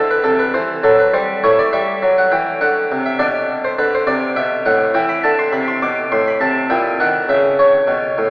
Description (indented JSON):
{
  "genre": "classical, baroque-style suite movement for harpsichord",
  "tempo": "102 BPM",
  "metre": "3/4",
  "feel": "rubato",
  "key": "unclear",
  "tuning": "A4 = 443 Hz",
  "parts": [
    { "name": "harpsichord", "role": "solo", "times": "0.0-8.3 s", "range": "A2 to D6", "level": "-13 LUFS", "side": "equal", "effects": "none" }
  ],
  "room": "wet cathedral reverb, RT60 5.6 s",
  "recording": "heard from further back in the room, telephone sound",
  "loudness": "-13 LUFS",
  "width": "side -23 dB against mid",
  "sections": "0.0-8.3 A section",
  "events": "none",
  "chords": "0.0 C; 1.4 A5; 2.6 D; 3.2 D13; 5.0 E5; 6.1 Amadd9; 6.7 A#dim"
}